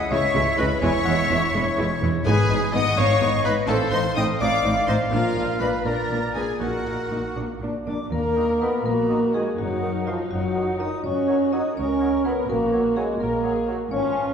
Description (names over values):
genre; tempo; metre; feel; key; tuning
cinematic; 83 BPM (dotted quarters); 6/8; straight; Eb minor; A4 = 440 Hz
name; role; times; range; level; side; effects
marimba with hard mallets; melody; 0.0-14.3 s; F4 to Eb5; -29 LUFS; left 4 dB; none
bright silver concert flute; second line; 0.0-14.3 s; Bb4 to Eb6; -31 LUFS; equal; none
mellow clarinet; second line; 0.0-14.3 s; Gb4 to G#5; -32 LUFS; equal; none
warm studio violin section; melody; 0.1-13.9 s; Db5 to Eb6; -30 LUFS; left 4 dB; none
rich studio violin section; second line; 0.1-13.9 s; F4 to Eb5; -32 LUFS; left 2 dB; none
warm oboe; second line; 0.1-14.3 s; F4 to F5; -32 LUFS; right 1 dB; none
rich studio viola section; accompaniment; 0.1-14.3 s; G#3 to Bb4; -30 LUFS; right 1 dB; none
rich studio double bass section; bass; 0.1-14.3 s; E1 to Eb2; -29 LUFS; right 1 dB; none
warm studio cello section; bass; 0.1-14.3 s; Db2 to C#3; -30 LUFS; right 1 dB; none
warm French horn section; sustained chords; 0.3-14.3 s; F3 to E4; -25 LUFS; equal; none
clear bassoon; accompaniment; 8.4-14.3 s; Eb3 to Gb3; -35 LUFS; right 1 dB; none
room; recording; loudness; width
wet scoring stage reverb, RT60 2.1 s; heard from further back in the room; -20 LUFS; side -7 dB against mid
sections
0.0-8.1 A section; 8.1-14.3 B section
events
none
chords
0.0 C#m; 0.8 C#m/E; 2.3 Abm; 3.7 F7/A; 5.1 Bb; 6.6 Ebm; 7.4 Bb; 8.1 Ebm; 9.6 Ebm/Gb; 11.0 Gb; 12.5 Gb/Bb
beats
0.11 | 0.82 1.54 | 2.25 2.97 | 3.68 4.40 | 5.12 5.85 | 6.61 7.36 | 8.12 8.85 | 9.58 10.30 | 11.04 11.77 | 12.49 13.20 | 13.91